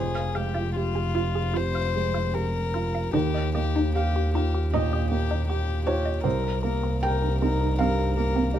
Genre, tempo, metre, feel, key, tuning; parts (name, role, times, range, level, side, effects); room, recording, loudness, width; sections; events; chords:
neoclassical piano and strings; 72-81 BPM; 4/4; rubato; A4 = 438 Hz
warm violin; melody; 0.0-8.6 s; F4 to C5; -30 LUFS; left 6 dB
felt-muted upright piano; accompaniment; 0.0-8.6 s; C2 to G5; -28 LUFS; right 4 dB
resonant blip pluck; arpeggios; 0.0-8.6 s; C4 to F5; -32 LUFS; equal; phaser
warm double bass; bass; 0.0-8.6 s; F1 to Eb2; -26 LUFS; equal
light reverb; close, detailed microphones, lossy compression artefacts; -23 LUFS; side -10 dB against mid
0.0-8.6 A section
0.0 Fmadd9; 3.1 Ebadd9; 6.2 Cm7